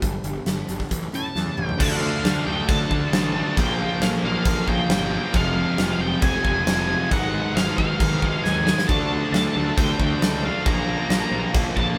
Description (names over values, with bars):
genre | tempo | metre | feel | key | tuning
quiet-loud alternative rock | 135 BPM | 4/4 | straight | unclear | A4 = 440 Hz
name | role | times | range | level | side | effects
picked steel-string acoustic guitar | arpeggios | 0.0-1.8 s | G2 to D4 | -36 LUFS | equal | none
fuzz picked electric bass | bass | 0.0-11.9 s | F1 to A2 | -30 LUFS | equal | overdrive
huge arena drum kit | drums | 0.0-11.9 s | crash cymbal, hi-hat, kick drum, snare drum, toms | -26 LUFS | equal | none
octave-fuzz lead guitar | melody | 1.2-12.0 s | F5 to Bb5 | -29 LUFS | equal | distortion
scooped high-gain guitar | riff | 1.8-12.0 s | F2 to D4 | -32 LUFS | equal | distortion
thick fuzz guitar | riff | 1.8-12.0 s | G#2 to F4 | -31 LUFS | equal | distortion
thick fuzz guitar | riff | 1.8-12.0 s | F2 to D4 | -31 LUFS | equal | distortion
room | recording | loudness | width
moderate studio reverb, RT60 0.7 s | band playing live in one room | -22 LUFS | mono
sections
0.0-1.8 A section; 1.8-12.0 B section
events
drum fill 1.4-1.8, 8.4-8.9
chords
0.0 G; 0.9 A7; 1.8 Dm; 3.6 Bbm; 5.3 Fm; 7.1 G#m; 8.9 Dm; 10.7 Bbm